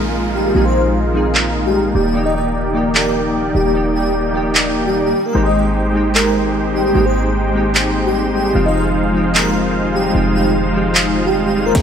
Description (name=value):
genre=future bass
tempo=150 BPM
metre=4/4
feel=swing 55% on 16ths, half-time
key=unclear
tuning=A4 = 440 Hz
part: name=glassy digital keys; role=accompaniment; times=0.0-11.8 s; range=F3 to D5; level=-22 LUFS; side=left 2 dB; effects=chorus, sidechain pumping, dub echo
part: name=airy breathy pad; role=sustained chords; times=0.0-11.8 s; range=Eb3 to D5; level=-26 LUFS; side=right 1 dB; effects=none
part: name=dense compressed supersaw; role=riff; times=0.0-11.8 s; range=Ab3 to Ab5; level=-18 LUFS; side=right 1 dB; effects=sidechain pumping, low-pass filter
part: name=warm 808-style bass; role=bass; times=0.0-11.8 s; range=Eb1 to Bb1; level=-21 LUFS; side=equal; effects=sidechain pumping
part: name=downlifter and riser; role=sound effects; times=0.0-2.1, 11.8 s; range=none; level=-34 LUFS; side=equal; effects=none
part: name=airy dreamy lead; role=melody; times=0.3-11.8 s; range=G4 to Eb5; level=-20 LUFS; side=equal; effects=chorus, sidechain pumping, dub echo
part: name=dubstep drum kit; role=drums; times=1.3-11.8 s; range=handclaps, hi-hat, snare drum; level=-17 LUFS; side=equal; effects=high-pass filter on hats, low-pass filter on hats, high-pass filter on snare, low-pass filter on snare, high-pass filter on cymbals, low-pass filter on cymbals
part: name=electronic kick drum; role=drums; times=11.8 s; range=none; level=-13 LUFS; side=equal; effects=distortion
room=light reverb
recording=none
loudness=-13 LUFS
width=side -8 dB against mid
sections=0.0-11.7 A section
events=none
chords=0.0 Bb7sus4; 1.9 Ebmaj7; 5.3 Abmaj7; 8.5 Fm7